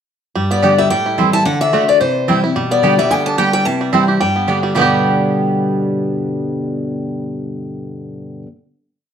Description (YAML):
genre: bluegrass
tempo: 218 BPM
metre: 4/4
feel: swing 56% on 8ths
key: G major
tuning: A4 = 437 Hz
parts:
  - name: picked steel-string acoustic guitar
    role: accompaniment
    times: 0.4-8.5 s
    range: G2 to G4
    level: -18 LUFS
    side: left 1 dB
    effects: none
  - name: bluegrass banjo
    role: arpeggios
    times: 0.4-8.4 s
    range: D3 to G4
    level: -20 LUFS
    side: right 4 dB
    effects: none
  - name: picked steel-string acoustic guitar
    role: melody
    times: 0.5-8.4 s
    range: C5 to A5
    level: -17 LUFS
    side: left 4 dB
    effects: none
  - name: mandolin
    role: stabs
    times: 0.6-8.5 s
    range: A3 to G5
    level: -20 LUFS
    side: right 8 dB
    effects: slapback echo
room: moderate studio reverb, RT60 0.7 s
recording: dark, warm production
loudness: -13 LUFS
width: side -8 dB against mid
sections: 0.4-4.8 A section; 4.8-7.0 final chord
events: none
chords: 0.4 G; 0.9 Am7; 1.5 D; 2.0 C; 2.6 G/B; 3.7 C; 4.2 G